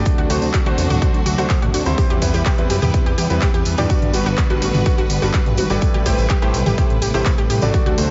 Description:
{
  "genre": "progressive house",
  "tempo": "125 BPM",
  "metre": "4/4",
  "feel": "straight",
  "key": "A dorian",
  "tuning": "A4 = 443 Hz",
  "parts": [
    { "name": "clear studio string section", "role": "sustained chords", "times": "0.0-8.1 s", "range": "C3 to B4", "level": "-27 LUFS", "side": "equal", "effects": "sidechain pumping" },
    { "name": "bright concert grand piano", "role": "stabs", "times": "0.0-8.1 s", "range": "G2 to D5", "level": "-27 LUFS", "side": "equal", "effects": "sidechain pumping, tape echo" },
    { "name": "fat analog bass", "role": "bass", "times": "0.0-8.1 s", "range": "G1 to G2", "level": "-24 LUFS", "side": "equal", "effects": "sidechain pumping" },
    { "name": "big-room dance drum kit", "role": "drums", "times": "0.1-8.1 s", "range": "handclaps, hi-hat", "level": "-31 LUFS", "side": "equal", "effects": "overdrive, studio ambience" },
    { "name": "electronic kick drum", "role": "drums", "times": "0.1-7.8 s", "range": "none", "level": "-20 LUFS", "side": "equal", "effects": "overdrive, studio ambience" },
    { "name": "tambourine", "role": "percussion", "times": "0.1-8.1 s", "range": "none", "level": "-34 LUFS", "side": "equal", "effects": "none" },
    { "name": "analog pluck", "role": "arpeggios", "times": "0.2-7.9 s", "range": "F#4 to G4", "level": "-28 LUFS", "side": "equal", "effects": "chorus, sidechain pumping, tape echo" },
    { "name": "electronic congas and toms", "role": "percussion", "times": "0.2-8.0 s", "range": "none", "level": "-28 LUFS", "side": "equal", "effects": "none" }
  ],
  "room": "light reverb, digital ambience",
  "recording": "nothing above 7.6 kHz",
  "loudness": "-17 LUFS",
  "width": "mono",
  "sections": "0.0-8.1 A section",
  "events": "none",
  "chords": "0.1 D7; 2.0 Cmaj7/E; 3.9 Gmaj7; 5.8 Am7"
}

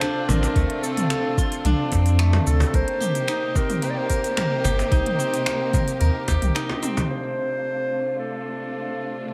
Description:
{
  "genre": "organic downtempo",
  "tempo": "110 BPM",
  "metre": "4/4",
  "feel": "straight",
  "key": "unclear",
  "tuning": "A4 = 442 Hz",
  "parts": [
    { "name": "mellow clarinet", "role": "melody", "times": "0.0-9.3 s", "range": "A4 to D5", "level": "-30 LUFS", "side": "equal", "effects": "tape echo" },
    { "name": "clear studio string section", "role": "sustained chords", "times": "0.0-9.3 s", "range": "C3 to G4", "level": "-33 LUFS", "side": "equal", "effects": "sidechain pumping, low-pass filter" },
    { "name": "steel-string zither", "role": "arpeggios", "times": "0.0-9.3 s", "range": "A3 to Bb4", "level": "-30 LUFS", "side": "equal", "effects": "tape echo" },
    { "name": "organic electronic drum kit", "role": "drums", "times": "0.0-9.3 s", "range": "cabasa, finger snaps, hi-hat, toms", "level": "-30 LUFS", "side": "equal", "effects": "overdrive, low-pass filter on hats, studio reverb, low-pass filter on perc, low-pass filter on toms, low-pass filter on snare" },
    { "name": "cajon", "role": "percussion", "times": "0.0-7.1 s", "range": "none", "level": "-32 LUFS", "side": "equal", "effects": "none" },
    { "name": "warm sub bass", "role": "bass", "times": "0.3-6.5 s", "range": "G1 to F2", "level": "-22 LUFS", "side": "equal", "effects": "sidechain pumping" },
    { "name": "electronic kick drum", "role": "drums", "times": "0.6-6.4 s", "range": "none", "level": "-25 LUFS", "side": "equal", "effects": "overdrive, studio reverb" },
    { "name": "bronze singing bowl", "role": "texture", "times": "7.1-9.3 s", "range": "C5", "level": "-36 LUFS", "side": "equal", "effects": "none" }
  ],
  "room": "moderate plate reverb, RT60 1.5 s",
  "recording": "dreamy mix soaked in reverb",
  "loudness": "-23 LUFS",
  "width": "mono",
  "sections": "0.0-7.1 A section; 7.1-9.3 B section",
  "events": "break 6.6-7.1; drum fill 6.7-7.1; filter sweep on drum 7.1-9.3; filter sweep on string section 7.1-9.3",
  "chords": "0.0 Dm7; 2.7 Cm7; 7.1 Dm7"
}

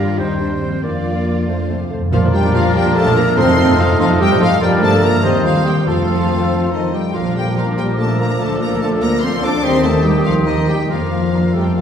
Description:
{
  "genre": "classical, dramatic, fast romantic movement for symphony orchestra",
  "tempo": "96 BPM (dotted quarters)",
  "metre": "6/8",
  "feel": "straight",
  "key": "Bb major",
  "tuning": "A4 = 441 Hz",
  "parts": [
    { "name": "rich symphonic violin section", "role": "melody", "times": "0.0-11.8 s", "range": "Eb5 to D6", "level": "-25 LUFS", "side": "left 4 dB", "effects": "none" },
    { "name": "mellow hollow concert flute", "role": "second line", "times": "0.0-11.8 s", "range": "C5 to F6", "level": "-28 LUFS", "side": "left 3 dB", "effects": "none" },
    { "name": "warm clarinet", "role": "second line", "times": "0.0-11.8 s", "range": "Eb4 to D5", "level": "-25 LUFS", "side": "left 1 dB", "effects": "none" },
    { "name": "warm oboe", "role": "second line", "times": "0.0-11.8 s", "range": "G4 to Eb5", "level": "-27 LUFS", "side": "right 2 dB", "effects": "none" },
    { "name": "warm symphonic violin section", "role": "second line", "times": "0.0-11.8 s", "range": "A3 to G5", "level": "-27 LUFS", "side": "left 2 dB", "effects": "none" },
    { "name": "dark bassoon", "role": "accompaniment", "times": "0.0-11.8 s", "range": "Eb3 to Bb3", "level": "-25 LUFS", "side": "right 2 dB", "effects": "none" },
    { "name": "warm symphonic viola section", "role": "accompaniment", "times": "0.0-11.8 s", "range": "D3 to D4", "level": "-24 LUFS", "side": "right 1 dB", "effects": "none" },
    { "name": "mellow French horn section", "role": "sustained chords", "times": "0.0-11.8 s", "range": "Eb3 to D4", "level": "-23 LUFS", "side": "left 1 dB", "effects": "none" },
    { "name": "concert harp", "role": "arpeggios", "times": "0.0-11.8 s", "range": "F2 to A5", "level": "-23 LUFS", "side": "left 3 dB", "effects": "none" },
    { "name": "dark studio cello section", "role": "bass", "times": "0.0-11.8 s", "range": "Eb3 to F4", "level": "-22 LUFS", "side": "right 2 dB", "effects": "none" },
    { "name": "warm symphonic double bass section", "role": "bass", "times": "0.0-11.8 s", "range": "Bb1 to G2", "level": "-22 LUFS", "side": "right 1 dB", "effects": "none" },
    { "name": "timpani", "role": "percussion", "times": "1.5-6.5 s", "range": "F2 to Bb2", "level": "-23 LUFS", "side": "equal", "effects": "none" },
    { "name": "warm trombone section", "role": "sustained chords", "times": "2.1-11.4 s", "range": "Eb3 to Eb4", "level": "-28 LUFS", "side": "right 2 dB", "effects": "none" },
    { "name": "dark trumpet section", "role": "stabs", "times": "2.1-11.8 s", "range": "F4 to C5", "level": "-25 LUFS", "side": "right 1 dB", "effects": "none" }
  ],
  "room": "wet concert hall reverb, RT60 2.0 s",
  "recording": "heard from further back in the room",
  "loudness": "-13 LUFS",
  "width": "side -8 dB against mid",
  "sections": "0.0-2.1 A section; 2.1-11.8 B section",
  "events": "timpani fill 1.5-2.1",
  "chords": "0.2 Cm/Eb; 0.8 Bb/F; 1.5 F; 2.1 Bb; 3.4 F7; 4.6 Gm7; 5.2 Cm/Eb; 5.9 F; 7.1 Bb; 8.4 Dm; 9.6 Cm/Eb; 10.9 Bb/F"
}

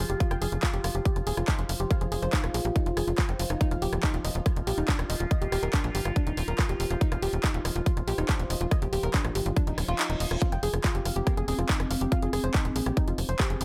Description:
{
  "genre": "psychedelic trance",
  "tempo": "141 BPM",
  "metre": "4/4",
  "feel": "straight",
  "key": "unclear",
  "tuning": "A4 = 439 Hz",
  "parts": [
    { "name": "overtone-sweeping drone", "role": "sustained chords", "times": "0.0-13.6 s", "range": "F3 to F4", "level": "-39 LUFS", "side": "equal", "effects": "chorus, built-in reverb, sidechain pumping" },
    { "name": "woody wave-folded pluck", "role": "riff", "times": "0.0-13.6 s", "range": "D4 to G5", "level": "-35 LUFS", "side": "equal", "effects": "chorus, sidechain pumping, delay" },
    { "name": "tight sequencer bass", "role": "bass", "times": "0.0-13.6 s", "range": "Eb1 to Bb1", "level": "-32 LUFS", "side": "equal", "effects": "none" },
    { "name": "big-room dance drum kit", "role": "drums", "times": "0.1-13.6 s", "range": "handclaps, hi-hat, rim click", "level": "-36 LUFS", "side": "equal", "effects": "none" },
    { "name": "electronic kick drum", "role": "drums", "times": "0.2-13.5 s", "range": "none", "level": "-29 LUFS", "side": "equal", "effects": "none" },
    { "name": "reverse cymbal and zap", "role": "sound effects", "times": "9.7-10.4, 13.6 s", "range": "none", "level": "-43 LUFS", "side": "equal", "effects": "none" },
    { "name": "vowel-sweep wobble bass", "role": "second line", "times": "10.4-12.3 s", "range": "Bb3 to F4", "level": "-45 LUFS", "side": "equal", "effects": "none" }
  ],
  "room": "digital ambience",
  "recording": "none",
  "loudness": "-27 LUFS",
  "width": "mono",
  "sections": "0.0-13.6 A section",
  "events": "reverse cymbal 9.7-10.4; kick drops out 10.0-10.4",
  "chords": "0.0 F5; 3.6 Eb5; 10.4 F5"
}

